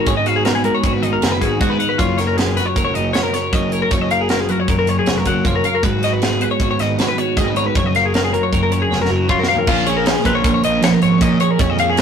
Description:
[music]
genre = math rock and midwest emo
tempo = 156 BPM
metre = 5/4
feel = straight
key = F# major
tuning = A4 = 439 Hz
[part]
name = twelve-string electric guitar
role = accompaniment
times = 0.0-12.0 s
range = F#2 to C#5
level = -19 LUFS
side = right 2 dB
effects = none
[part]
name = twelve-string electric guitar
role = arpeggios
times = 0.0-12.0 s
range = E#4 to F#5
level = -19 LUFS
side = left 5 dB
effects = warbly pitch drift
[part]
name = fuzz picked electric bass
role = bass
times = 0.1-12.0 s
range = E#1 to A#2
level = -23 LUFS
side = equal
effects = overdrive
[part]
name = crisp fusion drum kit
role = drums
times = 0.1-12.0 s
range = crash cymbal, hi-hat, kick drum, snare drum, toms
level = -20 LUFS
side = right 1 dB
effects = none
[sound]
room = moderate stone room reverb, RT60 1.2 s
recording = rough rehearsal-room recording, warm saturation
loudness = -14 LUFS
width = side -7 dB against mid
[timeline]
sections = 0.0-9.7 A section; 9.7-12.0 B section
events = drum fill 8.9-9.7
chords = 0.0 G#m7; 2.0 F#maj9; 5.8 G#m7; 7.8 F#maj9; 9.7 A#m7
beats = | 0.07 0.45 0.84 1.22 1.61 | 1.99 2.38 2.76 3.14 3.53 | 3.91 4.30 4.68 5.06 5.45 | 5.83 6.22 6.60 6.99 7.37 | 7.76 8.14 8.53 8.91 9.29 | 9.68 10.06 10.45 10.83 11.21 | 11.60 11.98

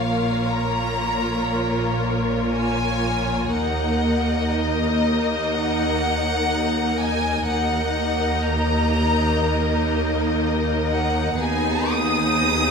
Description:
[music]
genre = cinematic, emotional film score for orchestra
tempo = 60 BPM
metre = 4/4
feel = rubato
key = Eb minor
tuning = A4 = 440 Hz
[part]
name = rich studio violin section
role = melody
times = 0.0-12.7 s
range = Eb5 to Eb6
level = -25 LUFS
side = left 2 dB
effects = none
[part]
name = rich studio violin section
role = second line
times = 0.0-12.7 s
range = Ab4 to Eb5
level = -27 LUFS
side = left 4 dB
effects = none
[part]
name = rich studio viola section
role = accompaniment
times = 0.0-12.7 s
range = Bb3 to F4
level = -24 LUFS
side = equal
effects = none
[part]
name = rich studio cello section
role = bass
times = 0.0-12.7 s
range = Eb2 to Bb2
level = -27 LUFS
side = right 2 dB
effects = none
[part]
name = rich studio double bass section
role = bass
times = 0.0-12.7 s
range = Bb1 to Eb2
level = -28 LUFS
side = right 2 dB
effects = none
[sound]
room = moderate scoring stage reverb, RT60 1.9 s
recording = none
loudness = -19 LUFS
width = side -5 dB against mid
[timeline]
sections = 0.0-12.7 A section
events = none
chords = 0.0 Bbm; 3.5 Ebm; 11.4 Abm/Eb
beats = 0.52 1.54 2.54 | 3.53 4.53 5.53 6.52 | 7.49 8.47 9.45 10.42 | 11.40 12.42

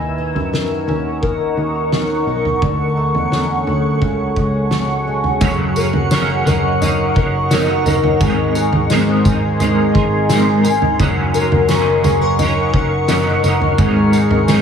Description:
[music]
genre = dream pop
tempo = 86 BPM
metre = 4/4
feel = straight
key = Gb lydian from 5.4 s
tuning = A4 = 439 Hz
[part]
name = shimmering ambient pad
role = sustained chords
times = 0.0-14.6 s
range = G#4 to C#6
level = -20 LUFS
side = equal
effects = chorus, built-in reverb, phaser
[part]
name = fingerpicked twelve-string acoustic guitar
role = arpeggios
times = 0.0-14.6 s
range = C#3 to Db5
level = -20 LUFS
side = left 4 dB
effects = lush chorus, tape echo
[part]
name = picked electric bass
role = bass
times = 0.0-14.6 s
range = Gb1 to F#2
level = -20 LUFS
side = equal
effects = none
[part]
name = loose indie drum kit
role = drums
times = 0.4-14.6 s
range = kick drum, snare drum, tambourine, toms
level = -20 LUFS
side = right 1 dB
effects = none
[part]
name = semi-hollow electric guitar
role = accompaniment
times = 5.4-14.6 s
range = Gb2 to Bb4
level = -20 LUFS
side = right 2 dB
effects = tremolo, ensemble chorus
[part]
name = drifting glass-harmonics texture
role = texture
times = 5.7-8.5, 13.6-14.6 s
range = Ab4 to Gb5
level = -31 LUFS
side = right 2 dB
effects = chorus, built-in reverb, tape echo
[sound]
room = moderate plate reverb, RT60 2.2 s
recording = dreamy mix soaked in reverb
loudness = -13 LUFS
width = side -7 dB against mid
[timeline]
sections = 0.0-5.4 A section; 5.4-14.6 B section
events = none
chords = 0.0 D#m7; 2.6 Dmaj7; 4.0 C#sus4; 5.4 Gb6; 8.2 Abadd9; 11.0 Gb6; 13.8 Abadd9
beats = 0.53 1.23 1.92 | 2.62 3.32 4.02 4.71 | 5.41 6.11 6.81 7.50 | 8.20 8.90 9.60 10.30 | 10.99 11.69 12.39 13.09 | 13.78 14.48

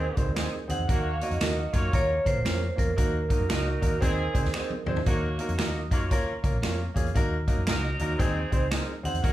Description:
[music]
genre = uptempo 1960s-style soul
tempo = 115 BPM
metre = 4/4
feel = swing 62% on 8ths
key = Eb dorian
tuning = A4 = 437 Hz
[part]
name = vibraphone with medium hard mallets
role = melody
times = 0.0-4.8, 9.1-9.3 s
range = Bb4 to Gb5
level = -32 LUFS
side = right 2 dB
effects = tape echo
[part]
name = mellow horn section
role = second line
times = 0.0-9.3 s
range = Eb3 to Eb5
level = -34 LUFS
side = right 3 dB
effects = none
[part]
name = clear baby grand piano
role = accompaniment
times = 0.0-9.3 s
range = Bb3 to C5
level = -32 LUFS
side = left 1 dB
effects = none
[part]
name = vintage muted fingered electric bass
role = bass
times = 0.0-9.3 s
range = Bb1 to Gb2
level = -29 LUFS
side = equal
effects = none
[part]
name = swinging big-band drum kit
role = drums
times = 0.2-9.3 s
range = hi-hat, kick drum, snare drum, toms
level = -28 LUFS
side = equal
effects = none
[part]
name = electric guitar through a small old amp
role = stabs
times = 0.4-8.9 s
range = Db4 to Eb5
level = -35 LUFS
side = right 6 dB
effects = ensemble chorus
[part]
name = finger snaps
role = percussion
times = 0.4-8.9 s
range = none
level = -36 LUFS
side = right 1 dB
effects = none
[sound]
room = little or no reverb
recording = studio reverb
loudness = -24 LUFS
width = side -14 dB against mid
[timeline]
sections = 0.0-9.3 A section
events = drum fill 4.5-5.1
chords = 0.0 Ab; 0.9 Ebm; 1.9 Bbm; 3.0 Ebm; 4.0 Ab; 5.1 Ebm; 6.1 Bbm; 7.2 Ebm; 8.2 Ab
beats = 0.37 | 0.89 1.41 1.94 2.46 | 2.98 3.50 4.02 4.54 | 5.07 5.59 6.11 6.63 | 7.15 7.67 8.19 8.72 | 9.24

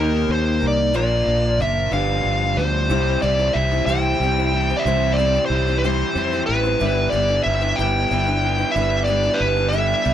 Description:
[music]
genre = rock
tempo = 62 BPM (dotted quarters)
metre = 6/8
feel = straight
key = C major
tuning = A4 = 440 Hz
[part]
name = smooth overdriven lead guitar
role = melody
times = 0.0-10.1 s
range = Bb4 to G5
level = -21 LUFS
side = equal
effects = none
[part]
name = picked steel-string acoustic guitar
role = accompaniment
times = 0.0-10.1 s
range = Bb2 to C5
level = -27 LUFS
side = left 3 dB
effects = none
[part]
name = warm upright piano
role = accompaniment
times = 0.0-10.1 s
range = C4 to C5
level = -33 LUFS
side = right 5 dB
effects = none
[part]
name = accordion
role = sustained chords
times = 0.0-10.1 s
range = G3 to Bb4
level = -33 LUFS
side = right 3 dB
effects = none
[part]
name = crunchy overdriven guitar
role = riff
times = 0.0-10.1 s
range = G2 to G4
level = -26 LUFS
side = equal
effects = none
[part]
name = fingered electric bass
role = bass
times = 0.0-10.1 s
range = F#1 to F2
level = -22 LUFS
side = equal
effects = none
[sound]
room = moderate small room reverb, RT60 0.5 s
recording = band playing live in one room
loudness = -17 LUFS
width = side -10 dB against mid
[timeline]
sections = 0.0-2.9 A section; 2.9-10.1 B section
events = none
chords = 0.0 Eb; 0.9 Bb; 1.9 G7; 2.9 C; 6.8 G6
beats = | 0.95 1.92 | 2.90 3.88 | 4.85 5.83 | 6.80 7.78 | 8.76 9.73

